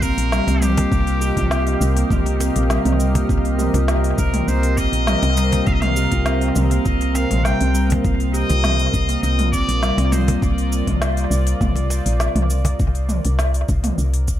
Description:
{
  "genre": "organic downtempo",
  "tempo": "101 BPM",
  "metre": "4/4",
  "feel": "straight",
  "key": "C minor",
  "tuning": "A4 = 440 Hz",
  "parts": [
    { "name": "trumpet with straight mute", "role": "melody", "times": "0.0-10.4 s", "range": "G4 to G5", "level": "-26 LUFS", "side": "equal", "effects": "dub echo" },
    { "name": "warm analog pad", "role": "sustained chords", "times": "0.0-14.4 s", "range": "C3 to Eb5", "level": "-27 LUFS", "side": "equal", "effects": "chorus, sidechain pumping" },
    { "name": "steel tongue drum", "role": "arpeggios", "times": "0.0-10.4 s", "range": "G3 to G4", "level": "-24 LUFS", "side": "right 1 dB", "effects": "analog delay" },
    { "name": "woody FM bass", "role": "bass", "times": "0.0-14.4 s", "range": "Bb1 to C2", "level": "-19 LUFS", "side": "equal", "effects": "sidechain pumping" },
    { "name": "electronic kick drum", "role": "drums", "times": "0.0-14.4 s", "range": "none", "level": "-22 LUFS", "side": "equal", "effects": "overdrive" },
    { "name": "organic electronic drum kit", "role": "drums", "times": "0.0-14.4 s", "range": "hi-hat, shaker, snare drum, toms", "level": "-25 LUFS", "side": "equal", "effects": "analog delay" },
    { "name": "drifting glass-harmonics texture", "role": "texture", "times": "0.0-12.8 s", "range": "F4 to F5", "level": "-35 LUFS", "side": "right 1 dB", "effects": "chorus, built-in reverb" },
    { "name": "cajon", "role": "percussion", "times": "0.5-12.8 s", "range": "none", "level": "-26 LUFS", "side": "right 2 dB", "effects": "analog delay" }
  ],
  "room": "light reverb",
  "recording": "echo-heavy mix",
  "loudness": "-16 LUFS",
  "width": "side -12 dB against mid",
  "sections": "0.0-14.4 A section",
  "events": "none",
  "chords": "0.0 Cm7; 8.0 Bbadd9"
}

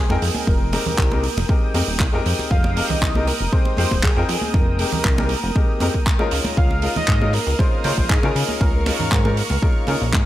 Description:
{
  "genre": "nu-disco, nu disco",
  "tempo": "118 BPM",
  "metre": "4/4",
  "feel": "straight",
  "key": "F minor",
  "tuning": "A4 = 441 Hz",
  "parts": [
    { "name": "wide unison lead", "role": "melody", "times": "0.0-10.1 s", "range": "Ab4 to F5", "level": "-27 LUFS", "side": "equal", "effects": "cassette tape, analog delay" },
    { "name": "lush unison pad", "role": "sustained chords", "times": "0.0-10.3 s", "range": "Bb4 to Eb6", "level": "-31 LUFS", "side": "left 1 dB", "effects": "chorus, sidechain pumping" },
    { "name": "chorused synth bass", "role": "bass", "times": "0.0-10.2 s", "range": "Eb1 to Db3", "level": "-22 LUFS", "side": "equal", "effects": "none" },
    { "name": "clear grand piano", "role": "accompaniment", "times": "0.1-10.0 s", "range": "Ab3 to G5", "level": "-26 LUFS", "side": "left 3 dB", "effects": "analog delay" },
    { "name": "congas", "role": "percussion", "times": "0.1-10.2 s", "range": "none", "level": "-29 LUFS", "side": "right 2 dB", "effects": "none" },
    { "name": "street-band drum kit", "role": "drums", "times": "0.2-10.2 s", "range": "handclaps, hi-hat", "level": "-26 LUFS", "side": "right 3 dB", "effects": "none" },
    { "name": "electronic kick drum", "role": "drums", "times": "0.5-10.2 s", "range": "none", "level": "-19 LUFS", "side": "equal", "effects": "none" }
  ],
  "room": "small room reverb",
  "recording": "none",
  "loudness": "-17 LUFS",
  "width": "side -14 dB against mid",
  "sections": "0.0-10.3 A section",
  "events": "none",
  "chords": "0.0 Fm11; 6.3 Db69"
}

